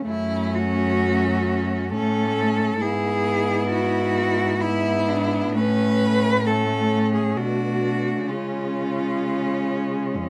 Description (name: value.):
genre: classical, lyrical piece for cello ensemble.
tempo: 66 BPM.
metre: 3/4.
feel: uneven beats, rubato.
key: F# minor.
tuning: A4 = 438 Hz.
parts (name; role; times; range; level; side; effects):
warm cello; accompaniment; 0.0-10.3 s; G#3 to B3; -28 LUFS; equal; none.
rich cello; melody; 0.1-10.3 s; E4 to B4; -27 LUFS; equal; none.
warm cello; second line; 0.1-10.3 s; C#4 to E4; -30 LUFS; equal; none.
clear cello; bass; 0.1-10.3 s; E#2 to C#3; -28 LUFS; equal; none.
room: light reverb.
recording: none.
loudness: -22 LUFS.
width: mono.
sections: 0.1-10.3 A section.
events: none.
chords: 0.1 F#m; 2.8 E/G#; 5.5 A; 7.4 Bm7; 8.3 C#.